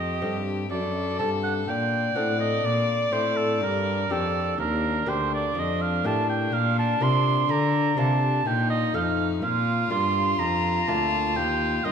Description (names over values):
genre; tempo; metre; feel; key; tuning
classical, baroque-style sonata movement with continuo; 62 BPM; 3/4; straight; G minor, Bb major from 6.5 s; A4 = 439 Hz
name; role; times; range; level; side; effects
rich violin; melody; 0.0-11.9 s; D4 to D5; -29 LUFS; left 7 dB; none
clear oboe; second line; 0.0-11.9 s; A4 to C6; -26 LUFS; right 6 dB; none
lute; accompaniment; 0.0-11.9 s; D2 to A4; -31 LUFS; left 2 dB; none
rich cello; bass; 0.0-11.9 s; D2 to D3; -27 LUFS; equal; none
room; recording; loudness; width
wet recital hall reverb, RT60 1.3 s; none; -22 LUFS; side -7 dB against mid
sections
0.0-11.9 A section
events
none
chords
0.0 Am7b5; 0.7 D7/F#; 3.6 Gm; 6.5 Bb; 8.5 F7/Bb; 9.4 Bb; 11.4 Eb